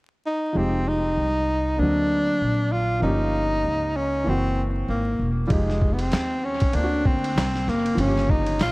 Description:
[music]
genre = hip hop, jazz-hop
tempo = 97 BPM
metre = 4/4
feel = swing 60% on 16ths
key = F minor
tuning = A4 = 439 Hz
[part]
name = breathy tenor saxophone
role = melody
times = 0.3-8.7 s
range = G3 to F4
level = -24 LUFS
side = equal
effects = analog delay
[part]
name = warm grand piano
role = accompaniment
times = 0.5-8.7 s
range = Db3 to G4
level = -28 LUFS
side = right 1 dB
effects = none
[part]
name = upright bass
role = bass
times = 0.6-8.7 s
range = Fb1 to Eb2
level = -26 LUFS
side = equal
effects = none
[part]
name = boom bap sampler-style drum kit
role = drums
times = 5.5-8.7 s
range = hi-hat, kick drum, ride cymbal, snare drum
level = -25 LUFS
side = equal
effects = none
[sound]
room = light reverb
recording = echo-heavy mix, vinyl crackle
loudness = -20 LUFS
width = side -23 dB against mid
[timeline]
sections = 0.6-5.5 A section; 5.5-8.7 B section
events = none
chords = 0.0 N.C.; 0.6 Fm9; 1.8 Daug7; 3.0 Gm7b5; 4.3 Gb7#11; 5.5 Fm9; 6.7 Daug7; 8.0 Gm7b5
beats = | 0.55 1.17 1.79 2.41 | 3.03 3.65 4.27 4.88 | 5.50 6.12 6.74 7.36 | 7.98 8.60

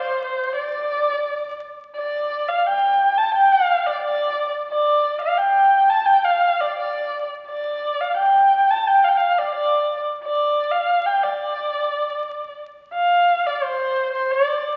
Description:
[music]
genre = chinese traditional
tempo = 88 BPM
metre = 2/4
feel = rubato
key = D yu mode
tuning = A4 = 442 Hz
[part]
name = dark erhu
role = solo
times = 0.0-14.8 s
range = C5 to A5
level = -20 LUFS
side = equal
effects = none
[sound]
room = wet scoring stage reverb, RT60 1.8 s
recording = very old 78 rpm record, vinyl crackle, nothing above 7.6 kHz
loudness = -20 LUFS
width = mono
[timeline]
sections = 0.0-2.0 A section; 2.0-12.9 B section; 12.9-14.8 A section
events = none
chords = none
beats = | 0.56 1.25 | 1.96 2.65 | 3.35 4.03 | 4.71 5.39 | 6.07 6.75 | 7.46 8.16 | 8.85 9.53 | 10.21 10.88 | 11.56 12.24 | 12.93 13.61 | 14.29

